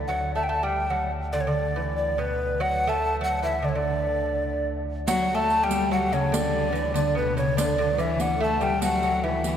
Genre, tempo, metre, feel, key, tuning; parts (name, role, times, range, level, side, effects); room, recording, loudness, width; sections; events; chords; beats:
medieval dance; 144 BPM; 3/4; straight; D major; A4 = 440 Hz
pipe organ, sparkling flutes; drone; 0.0-9.6 s; D2; -32 LUFS; equal
mellow hollow tenor recorder; melody; 0.1-9.6 s; B4 to A5; -25 LUFS; equal
lute; second line; 0.1-9.6 s; B2 to A3; -29 LUFS; right 2 dB
warm viola da gamba; second line; 5.1-9.6 s; B2 to A3; -28 LUFS; left 4 dB
riq; percussion; 5.1-9.6 s; -33 LUFS; right 3 dB
wet cathedral reverb, RT60 4.7 s; recorded in a church or concert hall; -22 LUFS; side -9 dB against mid
0.0-5.1 A section; 5.1-9.6 A section
| 0.07 0.49 0.91 | 1.33 1.75 2.17 | 2.58 3.00 3.42 | 3.83 4.25 4.67 | 5.08 5.50 5.91 | 6.33 6.75 7.16 | 7.57 7.99 8.40 | 8.82 9.23